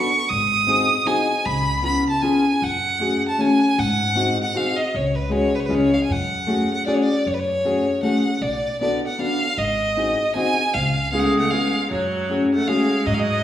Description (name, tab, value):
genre	musette waltz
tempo	155 BPM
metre	3/4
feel	straight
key	F# harmonic minor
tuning	A4 = 440 Hz
part	rich violin	melody	0.0-13.4 s	B4 to D#6	-21 LUFS	right 1 dB	none
part	fingerpicked plugged-in steel-string acoustic guitar	accompaniment	0.0-12.9 s	G#3 to A4	-22 LUFS	left 2 dB	none
part	upright bass	bass	0.3-13.4 s	G#1 to G#2	-27 LUFS	equal	none
part	bright viola	second line	11.1-13.4 s	F#3 to A3	-24 LUFS	right 3 dB	none
room	wet recital hall reverb, RT60 1.5 s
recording	recorded in a church or concert hall, small room reverb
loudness	-18 LUFS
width	side -11 dB against mid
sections	0.0-7.3 A section; 7.3-13.4 A section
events	none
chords	0.3 G#7; 1.5 C#7; 2.6 F#madd9; 3.8 G#7; 4.9 C#sus4; 5.7 C#; 6.1 F#madd9; 8.4 Bm7; 9.6 G#7; 10.7 C#7; 11.9 F#madd9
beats	| 0.30 0.69 1.07 | 1.46 1.84 2.23 | 2.62 3.01 3.40 | 3.79 4.17 4.56 | 4.94 5.32 5.71 | 6.09 6.48 6.87 | 7.26 7.65 8.04 | 8.43 8.81 9.20 | 9.58 9.97 10.35 | 10.74 11.13 11.52 | 11.91 12.30 12.68 | 13.07